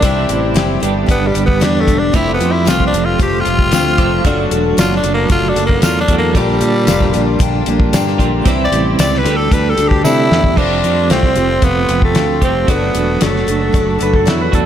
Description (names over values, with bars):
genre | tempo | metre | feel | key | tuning
folk rock and heartland rock | 114 BPM | 4/4 | straight | unclear | A4 = 440 Hz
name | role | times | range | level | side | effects
raspy tenor saxophone | melody | 0.0-14.3 s | G3 to D5 | -17 LUFS | equal | none
picked twelve-string acoustic guitar | accompaniment | 0.0-14.7 s | G2 to A4 | -20 LUFS | left 7 dB | slapback echo
rich chamber string section | sustained chords | 0.0-14.7 s | F#3 to G4 | -26 LUFS | equal | none
twelve-string electric guitar | riff | 0.0-14.7 s | G2 to G4 | -20 LUFS | right 8 dB | tremolo
modern bright fingered electric bass | bass | 0.0-14.7 s | E1 to C3 | -18 LUFS | equal | none
damped 70s drum kit | drums | 0.0-14.7 s | crash cymbal, hi-hat, kick drum, snare drum, toms | -17 LUFS | equal | none
tambourine | percussion | 2.7-10.2 s | none | -29 LUFS | right 9 dB | none
clean lap steel guitar | second line | 14.0-14.7 s | E4 to B4 | -19 LUFS | right 5 dB | none
room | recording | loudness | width
moderate lush hall reverb, RT60 2.7 s | big arena sound | -11 LUFS | side -10 dB against mid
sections
0.0-10.6 A section; 10.6-14.7 B section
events
tenor saxophone solo 0.0-10.6; drum fill 10.0-10.6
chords
0.0 C; 0.8 G; 2.1 Fadd9; 4.2 D; 6.4 Bb6; 8.5 C; 9.3 Dsus4; 10.6 Fadd9; 12.7 D